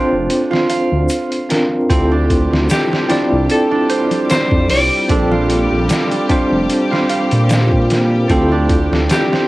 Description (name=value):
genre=trip hop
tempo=75 BPM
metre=4/4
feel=swing 54% on 16ths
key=D minor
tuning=A4 = 439 Hz
part: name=bell-like tine electric piano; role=accompaniment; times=0.0-9.5 s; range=C4 to D5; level=-18 LUFS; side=equal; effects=tremolo, cassette tape, tape echo
part: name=concert harp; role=arpeggios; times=0.0-9.5 s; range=C4 to F5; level=-20 LUFS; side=right 4 dB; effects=cassette tape, tape echo
part: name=dark detuned saw bass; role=bass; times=0.1-9.1 s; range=F1 to Bb2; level=-16 LUFS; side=equal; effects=none
part: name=trip hop sampler-style drum kit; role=drums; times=0.3-9.5 s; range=hi-hat, kick drum, snare drum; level=-19 LUFS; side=equal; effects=cassette tape
part: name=tube shaker and congas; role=percussion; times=1.1-9.3 s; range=none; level=-28 LUFS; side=left 3 dB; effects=none
part: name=bright symphonic string section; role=sustained chords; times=1.9-9.5 s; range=G3 to G4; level=-24 LUFS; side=left 2 dB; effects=cassette tape
part: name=semi-hollow electric guitar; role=melody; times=2.7-9.5 s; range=G4 to D5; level=-19 LUFS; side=equal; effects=cassette tape, tape echo
room=light reverb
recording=home recording on cassette, vinyl crackle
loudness=-12 LUFS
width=side -18 dB against mid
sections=0.0-9.5 A section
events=none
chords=0.0 Bbmaj7; 1.9 Dm9; 5.1 Bbmaj7; 8.3 Dm9